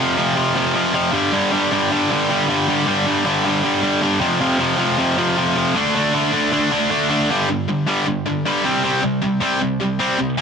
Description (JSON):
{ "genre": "punk", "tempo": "156 BPM", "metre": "4/4", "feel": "straight", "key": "unclear", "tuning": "A4 = 440 Hz", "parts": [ { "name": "distorted electric guitar", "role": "solo", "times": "0.0-10.4 s", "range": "F2 to D4", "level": "-16 LUFS", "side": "equal", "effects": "overdrive" } ], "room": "moderate small room reverb, RT60 0.5 s", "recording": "dense, heavily limited modern master", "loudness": "-16 LUFS", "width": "side -6 dB against mid", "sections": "0.0-7.3 A section; 7.3-10.4 B section", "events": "none", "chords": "0.0 F5; 1.1 G5; 4.2 F5; 5.8 D5; 7.3 G5; 8.6 C5" }